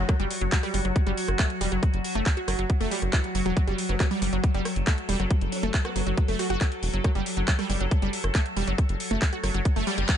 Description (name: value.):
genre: psychedelic trance.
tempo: 138 BPM.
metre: 4/4.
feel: straight.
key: F# phrygian.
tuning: A4 = 440 Hz.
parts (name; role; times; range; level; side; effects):
overtone-sweeping drone; sustained chords; 0.0-10.2 s; F#3 to A4; -31 LUFS; left 1 dB; chorus, built-in reverb, sidechain pumping.
wide unison pluck; riff; 0.0-10.2 s; E3 to F#4; -30 LUFS; right 1 dB; auto-pan, sidechain pumping, ping-pong delay.
round analog bass; bass; 0.0-10.0 s; E1 to F#1; -28 LUFS; equal; none.
drum and bass drum kit; drums; 0.1-10.2 s; handclaps, hi-hat, rim click; -32 LUFS; equal; overdrive.
electronic kick drum; drums; 0.1-10.2 s; none; -23 LUFS; equal; overdrive.
formant-sweep wobble bass; second line; 3.9-6.0 s; B3 to C#4; -43 LUFS; right 4 dB; none.
reverse cymbal; sound effects; 9.8-10.2 s; none; -37 LUFS; left 3 dB; none.
room: little or no reverb.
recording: nothing above 10.3 kHz.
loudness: -23 LUFS.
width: side -9 dB against mid.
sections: 0.0-10.2 A section.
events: reverse cymbal 9.8-10.2.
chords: 0.0 F#5.